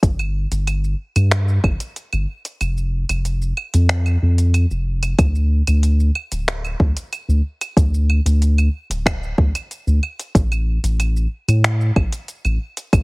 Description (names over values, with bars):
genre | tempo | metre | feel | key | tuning
sunset chillout | 93 BPM | 4/4 | straight | unclear | A4 = 440 Hz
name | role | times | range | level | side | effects
round analog bass | bass | 0.0-13.0 s | D1 to A2 | -17 LUFS | equal | none
deep house drum kit | drums | 0.0-13.0 s | claves, finger snaps, hi-hat, shaker | -23 LUFS | right 1 dB | small room ambience
electronic kick drum | drums | 0.0-13.0 s | none | -16 LUFS | equal | small room ambience
room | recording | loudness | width
little or no reverb | heavily compressed radio sound | -17 LUFS | side -27 dB against mid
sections
0.0-5.2 A section; 5.2-13.0 B section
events
kick drops out 2.6-5.2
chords
none